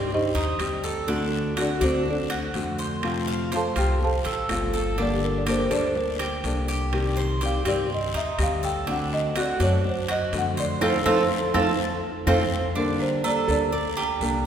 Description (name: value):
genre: latin, Cuban son and guajira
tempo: 123 BPM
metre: 4/4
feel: straight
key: G minor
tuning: A4 = 440 Hz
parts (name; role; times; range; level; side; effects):
- folk marimba with soft mallets; melody; 0.0-14.5 s; C4 to A5; -28 LUFS; right 1 dB; none
- nylon-string guitar; accompaniment; 0.0-14.5 s; C3 to A4; -28 LUFS; left 2 dB; none
- Cuban tres; arpeggios; 0.0-14.4 s; C4 to F5; -29 LUFS; right 3 dB; none
- upright bass; bass; 0.0-14.5 s; G1 to G2; -29 LUFS; equal; none
- guiro; percussion; 0.1-14.5 s; none; -38 LUFS; left 7 dB; none
- timbales and agogo bells; percussion; 0.4-14.5 s; none; -33 LUFS; right 5 dB; none
- claves; percussion; 0.6-12.4 s; none; -39 LUFS; left 2 dB; none
room: wet concert hall reverb, RT60 2.5 s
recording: recorded in a church or concert hall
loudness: -22 LUFS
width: side -8 dB against mid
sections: 0.0-12.8 A section; 12.8-14.5 B section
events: marimba solo 0.0-12.8; band accent 10.8-12.8; drum fill 12.0-12.8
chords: 0.0 Cm; 1.1 D7; 3.0 F; 5.0 Gmadd9; 6.9 Cm; 8.9 D7; 10.8 F; 12.8 Gmadd9